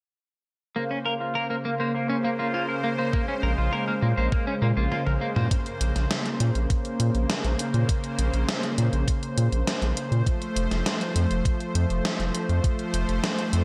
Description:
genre	synthwave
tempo	101 BPM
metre	4/4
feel	straight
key	Bb minor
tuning	A4 = 438 Hz
part	soft supersaw	sustained chords	0.8-13.6 s	Db3 to C5	-31 LUFS	equal	sidechain pumping
part	electric guitar at the edge of break-up	arpeggios	0.8-5.4 s	Bb3 to C5	-33 LUFS	equal	vintage 12-bit sampler grit, low-pass filter, delay
part	clean electric guitar	riff	0.8-5.5 s	Bb3 to Bb4	-33 LUFS	equal	lush chorus, low-pass filter, delay
part	electronic kick drum	drums	3.1-12.8 s	none	-27 LUFS	equal	studio reverb
part	round analog bass	bass	3.4-13.6 s	F1 to Bb2	-26 LUFS	equal	sidechain pumping
part	gated 80s digital drum machine	drums	4.9-13.6 s	hi-hat, snare drum, toms	-32 LUFS	equal	gated reverb, gated reverb snare, studio reverb
room	light reverb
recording	none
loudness	-26 LUFS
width	mono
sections	0.8-5.5 A section; 5.5-13.6 B section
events	filter sweep on clean electric guitar 0.8-5.5; drum fill 4.9-5.5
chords	0.8 Bbmadd9; 10.3 F

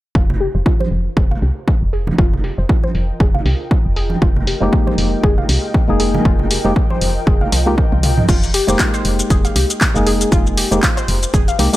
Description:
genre	deep house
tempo	118 BPM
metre	4/4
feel	swing 57% on 16ths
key	F minor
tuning	A4 = 439 Hz
part	woody FM bass	bass	0.1-11.7 s	F1 to C2	-19 LUFS	equal	sidechain pumping
part	ethereal airy pad	texture	1.6-11.8 s	F4 to G5	-30 LUFS	equal	ensemble chorus, built-in reverb, sidechain pumping
part	warbly dusty pluck	arpeggios	0.2-11.6 s	F3 to F5	-24 LUFS	equal	chorus, phaser, sidechain pumping, dub echo
part	electronic kick drum	drums	0.2-11.5 s	none	-15 LUFS	equal	none
part	congas	percussion	0.3-8.3 s	none	-24 LUFS	right 2 dB	none
part	punchy analog drum machine	drums	0.4-11.8 s	crash cymbal, handclaps, hi-hat, shaker, toms	-20 LUFS	left 1 dB	low-pass filter on hats, low-pass filter on toms, low-pass filter on cymbals, low-pass filter on perc, low-pass filter on snare, low-pass filter on room
part	percussive organ stab	stabs	4.6-11.8 s	Ab3 to Ab4	-20 LUFS	left 1 dB	chorus, sidechain pumping, dub echo
room	little or no reverb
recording	none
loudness	-13 LUFS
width	side -16 dB against mid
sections	0.2-8.3 A section; 8.3-11.8 B section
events	fade-in on ambient pad 0.2-8.3; filter sweep on synth pluck 0.2-8.3; drum fill 7.9-8.3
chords	0.2 Fm11

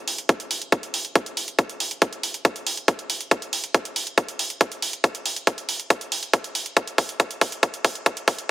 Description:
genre	psychedelic trance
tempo	139 BPM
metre	4/4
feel	straight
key	none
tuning	none
part	electronic hi-hat	drums	0.1-8.5 s	none	-27 LUFS	right 2 dB	none
part	electronic kick drum	drums	0.3-8.4 s	none	-21 LUFS	equal	high-pass filter on kick, high-pass filter on room
room	little or no reverb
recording	heavily compressed radio sound, multiband compression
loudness	-21 LUFS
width	side -17 dB against mid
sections	0.0-8.5 A section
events	build-up 0.0-8.5; drum fill 3.3-8.5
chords	none

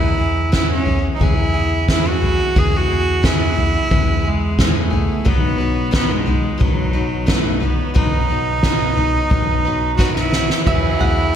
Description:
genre	indie folk with a building arrangement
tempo	89 BPM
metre	4/4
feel	straight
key	E major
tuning	A4 = 439 Hz
part	clear cello	melody	0.0-11.4 s	F#3 to G#4	-21 LUFS	right 3 dB	slapback echo, digital delay
part	picked steel-string acoustic guitar	accompaniment	0.0-11.3 s	B2 to B4	-24 LUFS	left 6 dB	slapback echo
part	fingered electric bass	bass	0.0-11.4 s	B1 to E2	-23 LUFS	equal	none
part	soft-mallet drum kit	drums	0.5-11.2 s	crash cymbal, kick drum, snare drum, toms	-18 LUFS	equal	none
part	bluegrass banjo	arpeggios	10.7-11.4 s	E5 to F#5	-25 LUFS	right 6 dB	slapback echo
room	light reverb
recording	none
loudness	-15 LUFS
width	side -9 dB against mid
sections	0.0-10.7 A section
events	drum fill 10.0-10.7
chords	0.0 E; 5.3 B; 10.7 Eadd9

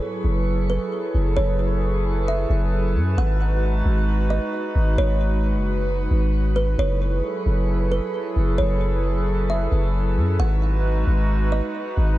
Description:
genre	hip hop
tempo	133 BPM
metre	4/4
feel	half-time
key	F# dorian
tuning	A4 = 442 Hz
part	kalimba	melody	0.0-12.2 s	B4 to F#5	-30 LUFS	right 2 dB	digital delay
part	hollow soft pad	sustained chords	0.0-12.2 s	F#3 to B4	-25 LUFS	right 1 dB	chorus
part	long sustained 808-style bass	bass	0.2-12.2 s	F#1 to F#2	-20 LUFS	equal	none
room	light reverb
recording	nothing above 10.3 kHz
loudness	-19 LUFS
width	side -16 dB against mid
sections	0.0-12.2 A section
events	none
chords	0.0 F#m11; 3.2 G#m7; 6.8 F#m11; 10.4 G#m7

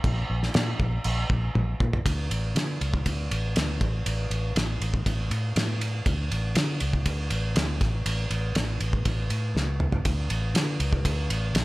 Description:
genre	classic rock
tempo	120 BPM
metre	4/4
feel	straight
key	unclear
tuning	A4 = 437 Hz
part	vintage muted fingered electric bass	bass	0.0-11.6 s	A1 to D3	-27 LUFS	equal	none
part	cloth-damped thuddy drum kit	drums	0.0-11.6 s	crash cymbal, kick drum, ride cymbal, snare drum, toms	-27 LUFS	equal	none
room	little or no reverb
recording	none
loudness	-24 LUFS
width	side -20 dB against mid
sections	0.0-2.0 A section; 2.0-11.6 B section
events	drum fill 1.5-2.0, 9.6-10.1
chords	none

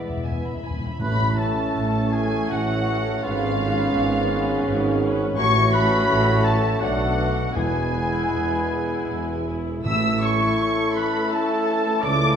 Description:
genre	classical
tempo	76-85 BPM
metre	3/4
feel	rubato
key	A major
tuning	A4 = 440 Hz
part	muted studio violin section	melody	0.0-12.4 s	D5 to E6	-28 LUFS	left 2 dB	none
part	mellow clarinet	second line	0.0-12.4 s	C#4 to B4	-31 LUFS	left 2 dB	none
part	mellow large flute ensemble	second line	0.0-12.4 s	G#4 to E6	-31 LUFS	equal	none
part	muted studio violin section	second line	0.0-12.4 s	E5 to E6	-31 LUFS	left 1 dB	none
part	warm oboe	second line	0.0-12.4 s	E#4 to E5	-31 LUFS	equal	none
part	muted studio viola section	accompaniment	0.0-12.4 s	E3 to B4	-32 LUFS	right 2 dB	none
part	warm bassoon	accompaniment	0.0-12.4 s	A3 to B3	-33 LUFS	right 1 dB	none
part	mellow French horn section	sustained chords	0.0-12.4 s	B3 to G#4	-30 LUFS	left 3 dB	none
part	muted studio cello section	bass	0.0-12.4 s	E2 to G#3	-30 LUFS	right 2 dB	none
part	muted studio double bass section	bass	0.0-12.4 s	E1 to E2	-28 LUFS	right 2 dB	none
part	timpani	percussion	0.0-2.1, 7.6-10.9 s	E2 to A2	-30 LUFS	left 1 dB	none
part	clear trombone section	sustained chords	1.0-12.4 s	G#2 to B3	-33 LUFS	equal	none
part	mellow trumpet	stabs	1.0-12.4 s	A4 to D5	-31 LUFS	left 1 dB	none
part	mellow tuba	bass	1.0-12.4 s	E1 to C#2	-29 LUFS	right 3 dB	none
room	wet scoring stage reverb, RT60 1.7 s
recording	minimal, uncompressed stereo recording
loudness	-19 LUFS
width	side -8 dB against mid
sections	0.0-1.0 A section; 1.0-12.4 B section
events	timpani fill 0.0-1.0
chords	0.0 E; 1.0 A; 3.2 C#7/G#; 5.4 F#m/A; 6.8 Bm7; 7.6 E; 9.9 A

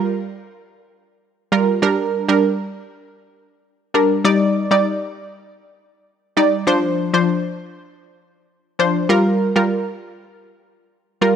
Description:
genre	dancehall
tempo	99 BPM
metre	4/4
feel	straight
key	unclear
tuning	A4 = 440 Hz
part	analog pluck	solo	1.5-11.4 s	F3 to D5	-16 LUFS	equal	chorus
room	light reverb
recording	none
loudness	-16 LUFS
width	side -8 dB against mid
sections	0.0-11.4 A section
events	none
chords	0.0 Gm7; 1.8 Bb6; 4.2 Ebmaj7; 6.7 Dm7; 9.1 Gm7

